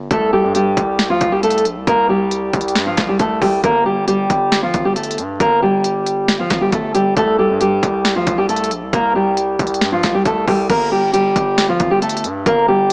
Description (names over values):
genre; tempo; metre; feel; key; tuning
hip hop, trap; 136 BPM; 4/4; half-time; G minor; A4 = 440 Hz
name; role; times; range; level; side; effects
distorted 808-style bass; bass; 0.0-12.9 s; G1 to G2; -22 LUFS; equal; distortion
fingerpicked steel-string acoustic guitar; melody; 0.1-12.9 s; F3 to Bb4; -14 LUFS; equal; low-pass filter, digital delay
trap drum kit; drums; 0.1-12.9 s; crash cymbal, hi-hat, kick drum, snare drum; -20 LUFS; equal; overdrive
room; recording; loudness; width
light reverb, digital ambience; vinyl crackle, small speaker sound; -13 LUFS; side -31 dB against mid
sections
0.0-10.7 A section; 10.7-12.9 B section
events
none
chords
0.1 C5; 3.6 Gm; 7.2 C5; 10.7 Gm